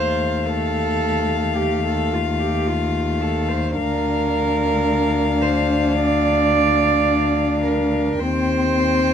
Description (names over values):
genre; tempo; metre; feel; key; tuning
classical, lyrical piece for cello ensemble; 54 BPM; 4/4; rubato; Bb major; A4 = 441 Hz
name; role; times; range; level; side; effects
warm cello; melody; 0.0-9.1 s; F5 to G5; -26 LUFS; left 14 dB; none
warm cello; second line; 0.0-9.1 s; F4 to D5; -22 LUFS; right 5 dB; none
dark cello; accompaniment; 0.0-9.1 s; A3 to D4; -23 LUFS; left 2 dB; none
dark cello; bass; 0.0-9.1 s; D2 to Eb2; -23 LUFS; equal; none
room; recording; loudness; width
light reverb; none; -17 LUFS; side -8 dB against mid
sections
0.0-9.1 A section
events
none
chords
0.0 F7/Eb; 3.8 Bb/D; 8.2 Cm/Eb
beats
0.45 1.56 2.67 | 3.76 4.87 5.97 7.06 | 8.19